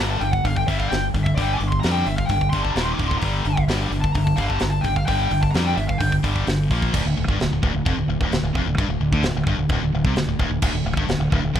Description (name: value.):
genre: heavy metal.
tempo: 130 BPM.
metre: 4/4.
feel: straight.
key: D minor.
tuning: A4 = 441 Hz.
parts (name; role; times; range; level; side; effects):
lead guitar through a small cranked amp; melody; 0.0-6.1 s; D5 to D6; -26 LUFS; left 1 dB; overdrive, ping-pong delay.
distorted electric guitar; riff; 0.0-11.6 s; D2 to Bb3; -27 LUFS; right 8 dB; overdrive.
high-gain distorted guitar; riff; 0.0-11.6 s; D2 to Bb3; -26 LUFS; left 8 dB; distortion.
growling fingered electric bass; bass; 0.0-11.6 s; D1 to F2; -23 LUFS; equal; overdrive.
tight metal drum kit; drums; 0.2-11.6 s; china cymbal, crash cymbal, hi-hat, kick drum, snare drum; -26 LUFS; equal; none.
room: small room ambience.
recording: rough home demo mix.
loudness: -19 LUFS.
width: side -10 dB against mid.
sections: 0.0-6.9 A section; 6.9-11.6 B section.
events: lead electric guitar solo 0.0-6.9.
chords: 0.0 G5; 2.8 Eb5; 3.0 D5; 3.2 Gm; 6.7 Bb5; 6.9 Dm.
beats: 0.46 0.92 | 1.38 1.84 2.31 2.77 | 3.23 3.70 4.16 4.62 | 5.09 5.55 6.01 6.48 | 6.94 7.40 7.87 8.33 | 8.79 9.25 9.72 10.18 | 10.64 11.11 11.57.